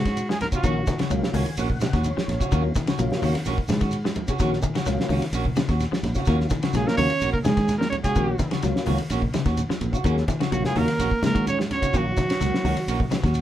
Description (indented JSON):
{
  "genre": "afrobeat",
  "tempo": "128 BPM",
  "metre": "4/4",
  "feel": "straight",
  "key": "Eb minor",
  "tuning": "A4 = 440 Hz",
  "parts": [
    { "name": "clear trumpet", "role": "melody", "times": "0.0-1.0, 6.8-13.4 s", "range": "Gb4 to Db5", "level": "-28 LUFS", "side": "right 1 dB", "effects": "none" },
    { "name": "semi-hollow electric guitar", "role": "arpeggios", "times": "0.0-13.4 s", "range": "Db3 to Gb3", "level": "-30 LUFS", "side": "left 5 dB", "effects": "none" },
    { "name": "fingered electric bass", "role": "bass", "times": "0.0-13.4 s", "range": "Bb1 to Ab2", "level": "-26 LUFS", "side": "equal", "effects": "none" },
    { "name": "clean electric guitar", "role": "stabs", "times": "0.1-13.4 s", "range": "Bb3 to Gb4", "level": "-32 LUFS", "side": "right 4 dB", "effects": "none" },
    { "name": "cloth-damped thuddy drum kit", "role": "drums", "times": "0.1-13.4 s", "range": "hi-hat, kick drum, ride cymbal, snare drum", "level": "-27 LUFS", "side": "equal", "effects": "none" },
    { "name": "shekere", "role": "percussion", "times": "0.1-13.4 s", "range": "none", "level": "-36 LUFS", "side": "right 2 dB", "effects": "none" },
    { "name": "congas", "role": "percussion", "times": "0.4-13.2 s", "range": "none", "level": "-32 LUFS", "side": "equal", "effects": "none" },
    { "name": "mellow tonewheel organ", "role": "accompaniment", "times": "0.5-12.8 s", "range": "Gb3 to Ab5", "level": "-30 LUFS", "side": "left 3 dB", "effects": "slow rotary speaker" },
    { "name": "trombone with bucket mute", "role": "second line", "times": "6.7-13.4 s", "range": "Gb3 to Db4", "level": "-28 LUFS", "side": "right 5 dB", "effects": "none" }
  ],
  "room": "moderate small room ambience, RT60 0.5 s",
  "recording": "band playing live in one room",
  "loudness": "-21 LUFS",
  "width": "side -12 dB against mid",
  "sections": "0.0-13.4 A section",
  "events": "tonewheel organ fill 1.1-2.5",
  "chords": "0.0 Ebm7"
}